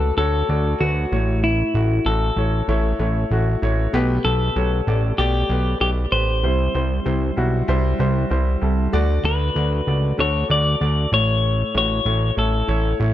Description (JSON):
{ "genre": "piano-driven pop", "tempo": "96 BPM", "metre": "4/4", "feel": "straight", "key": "D major", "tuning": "A4 = 440 Hz", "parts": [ { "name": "clean electric guitar", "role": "melody", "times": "0.0-13.0 s", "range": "E4 to D5", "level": "-22 LUFS", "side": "left 3 dB", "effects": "digital delay" }, { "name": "warm upright piano", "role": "accompaniment", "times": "0.0-13.1 s", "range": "A2 to D5", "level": "-25 LUFS", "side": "left 1 dB", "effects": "none" }, { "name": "fat analog bass", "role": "bass", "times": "0.0-13.1 s", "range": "A1 to D2", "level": "-20 LUFS", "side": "equal", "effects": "none" } ], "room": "studio ambience", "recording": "none", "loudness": "-17 LUFS", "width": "side -12 dB against mid", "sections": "0.0-13.1 A section", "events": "none", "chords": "0.0 D; 1.1 A; 3.9 Gadd9; 6.4 C; 8.9 D; 11.1 A", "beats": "0.18 0.81 | 1.43 2.06 2.68 3.31 | 3.93 4.56 5.18 5.81 | 6.44 7.06 7.69 8.31 | 8.94 9.56 10.19 10.81 | 11.44 12.07 12.69" }